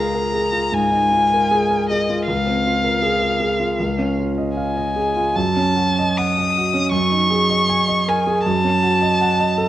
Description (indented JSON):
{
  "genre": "classical, impressionist duo for violin and grand piano",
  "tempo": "78 BPM",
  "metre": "4/4",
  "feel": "rubato",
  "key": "Db major",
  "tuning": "A4 = 439 Hz",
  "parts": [
    { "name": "rich violin", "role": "melody", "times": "0.0-9.7 s", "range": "Eb5 to Eb6", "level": "-19 LUFS", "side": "left 1 dB", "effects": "none" },
    { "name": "clear concert grand piano", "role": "accompaniment", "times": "0.0-9.7 s", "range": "Db2 to Ab5", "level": "-19 LUFS", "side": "right 1 dB", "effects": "none" }
  ],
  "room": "wet scoring stage reverb, RT60 1.7 s",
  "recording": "worn, warbling old tape, cassette tape, warbly pitch drift",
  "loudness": "-16 LUFS",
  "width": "side -13 dB against mid",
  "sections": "0.0-9.7 A section",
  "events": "none",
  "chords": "0.0 Db69; 2.3 Bbm9/Db; 3.8 Dbadd9; 5.4 Gbm6; 6.9 Ab9sus4/Gb; 8.4 Gbm6"
}